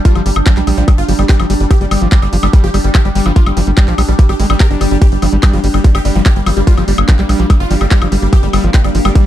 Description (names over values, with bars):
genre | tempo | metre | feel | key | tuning
psychedelic trance | 145 BPM | 4/4 | straight | G minor | A4 = 440 Hz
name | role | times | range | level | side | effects
overtone-sweeping drone | sustained chords | 0.0-9.3 s | G3 to D4 | -23 LUFS | right 2 dB | chorus, built-in reverb, phaser, sidechain pumping
granular cloud pad | texture | 0.2-9.3 s | D4 to G5 | -23 LUFS | left 1 dB | built-in reverb, sidechain pumping
supersaw stab | melody | 0.1-9.2 s | G3 to Bb4 | -20 LUFS | equal | phaser, sidechain pumping, ping-pong delay
screaming distorted acid line | riff | 0.1-9.3 s | F3 to G4 | -20 LUFS | moving between left 6 dB and right 6 dB | distortion, chorus, auto-pan, sidechain pumping, ping-pong delay
drum and bass drum kit | drums | 0.1-9.2 s | handclaps, hi-hat, woodblock | -20 LUFS | left 3 dB | overdrive
electronic kick drum | drums | 0.1-9.2 s | none | -8 LUFS | equal | none
tight sequencer bass | bass | 0.2-9.1 s | G1 to Bb1 | -14 LUFS | equal | none
room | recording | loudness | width
digital ambience | dark, warm production | -9 LUFS | side -12 dB against mid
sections
0.0-9.3 A section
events
none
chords
0.0 G5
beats
| 0.05 0.47 0.88 1.29 | 1.71 2.12 2.53 2.95 | 3.36 3.77 4.19 4.60 | 5.02 5.43 5.84 6.26 | 6.67 7.08 7.50 7.91 | 8.33 8.74 9.15